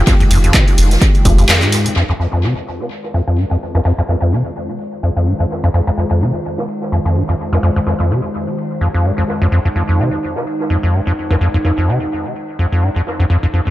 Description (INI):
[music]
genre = acid house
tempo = 127 BPM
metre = 4/4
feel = swing 56% on 16ths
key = F minor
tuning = A4 = 440 Hz
[part]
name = warm analog pad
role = sustained chords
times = 0.0-13.7 s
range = Eb3 to C5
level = -23 LUFS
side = equal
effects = chorus, sidechain pumping
[part]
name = acid bass, square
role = riff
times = 0.0-13.7 s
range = F2 to C3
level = -15 LUFS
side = equal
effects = overdrive, lush chorus, sidechain pumping, tape echo
[part]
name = round analog bass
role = bass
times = 0.0-1.4 s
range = F1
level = -12 LUFS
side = equal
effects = sidechain pumping
[part]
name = electronic kick drum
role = drums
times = 0.1-1.4 s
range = none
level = -12 LUFS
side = equal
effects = overdrive
[part]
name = open jazz drum kit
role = drums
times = 0.1-13.7 s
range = ride cymbal, snare drum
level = -27 LUFS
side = equal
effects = sidechain pumping on cymbals, high-pass filter on cymbals, low-pass filter on cymbals, high-pass filter on snare, low-pass filter on snare, high-pass filter on room, low-pass filter on room, tape echo
[part]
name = punchy analog drum machine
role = drums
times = 0.1-1.9 s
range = handclaps, hi-hat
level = -18 LUFS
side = equal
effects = overdrive, low-pass filter on hats, low-pass filter on snare, tape echo
[sound]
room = light reverb, digital ambience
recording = echo-heavy mix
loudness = -13 LUFS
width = side -15 dB against mid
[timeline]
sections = 0.0-2.0 A section; 2.0-13.7 B section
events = drop 0.0-2.0; band accent 1.5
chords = 0.0 Fm7